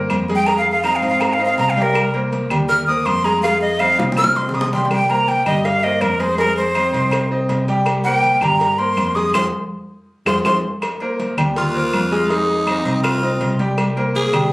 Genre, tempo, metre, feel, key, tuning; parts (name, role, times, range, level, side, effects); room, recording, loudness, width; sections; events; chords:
latin, salsa; 162 BPM; 4/4; straight; C minor; A4 = 440 Hz
bright concert grand piano; accompaniment; 0.0-14.5 s; G3 to Ab5; -22 LUFS; equal
picked electric bass; bass; 0.0-14.5 s; C2 to Ab2; -23 LUFS; equal
claves; percussion; 0.1-14.5 s; -28 LUFS; left 1 dB
congas; percussion; 0.1-14.5 s; -26 LUFS; equal
cowbell and bongos; percussion; 0.1-14.5 s; -29 LUFS; left 1 dB
timbales and agogo bells; percussion; 0.1-14.5 s; -27 LUFS; right 1 dB
breathy bright jazz flute; melody; 0.4-10.6 s; Bb4 to F6; -17 LUFS; equal
raspy tenor saxophone; melody; 11.6-14.5 s; Eb4 to Ab4; -20 LUFS; equal
moderate studio reverb, RT60 0.6 s; recorded on a phone in the room, club reverb; -15 LUFS; side -22 dB against mid
0.0-10.8 A section; 10.8-14.5 B section
flute solo 0.0-10.8; drum fill 4.0-4.9, 9.9-10.8; band accent 9.3-10.8
0.5 Fm7; 1.9 Cm7; 3.4 Fm7; 4.9 C5; 6.4 Fm7; 7.9 C5; 9.3 Fm; 10.8 Cm7; 12.3 Fm7; 13.8 C5